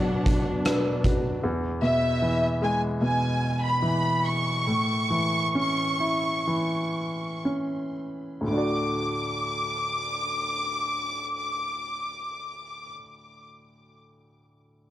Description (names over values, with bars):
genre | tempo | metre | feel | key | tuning
pop ballad | 56-77 BPM | 4/4 | straight | D major | A4 = 440 Hz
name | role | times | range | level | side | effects
rich studio violin section | melody | 0.0-12.9 s | E5 to D6 | -27 LUFS | equal | none
clear baby grand piano | accompaniment | 0.0-14.9 s | D2 to D5 | -27 LUFS | equal | none
rich symphonic string section | sustained chords | 0.0-1.4 s | B2 to D4 | -33 LUFS | equal | none
nylon-string guitar | arpeggios | 0.0-2.0 s | B2 to B4 | -31 LUFS | left 2 dB | digital delay
huge arena drum kit | drums | 0.3-1.2 s | hi-hat, kick drum, rim click | -26 LUFS | equal | none
room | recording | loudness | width
light reverb, small room ambience | worn, warbling old tape, cassette tape, warbly pitch drift | -24 LUFS | side -13 dB against mid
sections
0.0-8.5 A section; 8.5-12.8 B section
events
slowing down 1.4-8.5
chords
0.0 Bm; 1.4 E; 4.7 A; 8.5 D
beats
0.66 | 1.43 2.22 3.01 3.83 | 4.67 5.55 6.47 7.45 | 8.49 9.57 10.65 11.73